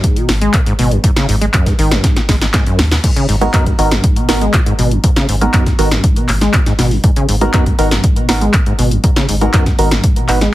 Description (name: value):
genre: acid house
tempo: 120 BPM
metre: 4/4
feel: straight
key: G# minor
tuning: A4 = 440 Hz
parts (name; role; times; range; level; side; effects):
- acid bass, saw; riff; 0.0-10.5 s; F#2 to G#3; -17 LUFS; equal; overdrive, analog chorus, sidechain pumping, tape echo
- electronic kick drum; drums; 0.0-10.1 s; none; -14 LUFS; equal; none
- punchy analog drum machine; drums; 0.0-10.5 s; crash cymbal, handclaps, hi-hat, snare drum; -18 LUFS; equal; none
- round analog bass; bass; 0.3-10.5 s; G#1 to D#2; -16 LUFS; equal; tube saturation, sidechain pumping
- percussive organ stab; stabs; 3.4-10.4 s; B3 to B4; -18 LUFS; right 2 dB; chorus, phaser, tape echo
room: light reverb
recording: heavily compressed radio sound, multiband compression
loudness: -10 LUFS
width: side -15 dB against mid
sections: 0.0-10.5 A section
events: drum fill 2.0-3.0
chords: 0.0 G#m7